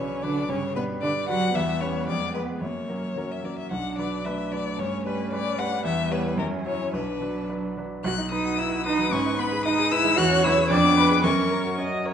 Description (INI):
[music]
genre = quick classical-period movement for piano quartet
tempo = 112 BPM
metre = 2/4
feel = straight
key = B minor, B major from 8.1 s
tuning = A4 = 440 Hz
[part]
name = rich violin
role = melody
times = 0.0-11.8 s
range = A#4 to F#6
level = -27 LUFS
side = left 8 dB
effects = none
[part]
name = rich cello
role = second line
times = 0.0-11.8 s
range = B2 to F#4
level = -28 LUFS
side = right 4 dB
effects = none
[part]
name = bright grand piano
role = accompaniment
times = 0.0-12.1 s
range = B1 to C#5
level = -27 LUFS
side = equal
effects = none
[part]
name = rich viola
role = accompaniment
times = 0.0-12.1 s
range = A#3 to D#5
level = -30 LUFS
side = right 1 dB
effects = none
[sound]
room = wet recital hall reverb, RT60 1.3 s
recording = nothing above 10.9 kHz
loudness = -22 LUFS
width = side -8 dB against mid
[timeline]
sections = 0.0-8.1 A section; 8.1-12.1 A section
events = none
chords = 0.5 G; 1.5 C#m7b5/E; 2.1 Fdim7; 2.6 F#; 3.7 Bm; 4.8 G; 5.9 C#m7b5/E; 6.4 F#7(no3); 6.9 Bm; 8.1 B; 9.1 G#m; 10.2 C#m7/E; 10.7 Fdim7; 11.2 F#